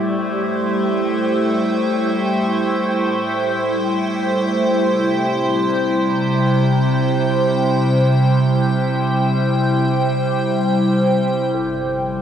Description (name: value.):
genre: ambient.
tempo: free time.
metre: none.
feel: none.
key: unclear.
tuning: A4 = 439 Hz.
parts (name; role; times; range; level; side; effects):
evolving wavetable pad; sustained chords; 0.0-12.2 s; A2 to G5; -16 LUFS; equal; chorus, built-in reverb, phaser.
organ-like drone; drone; 0.0-12.2 s; F3 to G4; -25 LUFS; equal; ensemble chorus, built-in reverb.
felt-muted upright piano; arpeggios; 11.5-12.2 s; none; barely audible; none; none.
bright studio double bass section; bass; 11.5-12.2 s; G1; -40 LUFS; equal; none.
room: wet lush hall reverb, RT60 2.9 s.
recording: dark, warm production.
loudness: -16 LUFS.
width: side -9 dB against mid.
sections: 0.0-11.5 A section.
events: none.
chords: 0.0 Am7; 4.8 C; 11.5 G7(no3).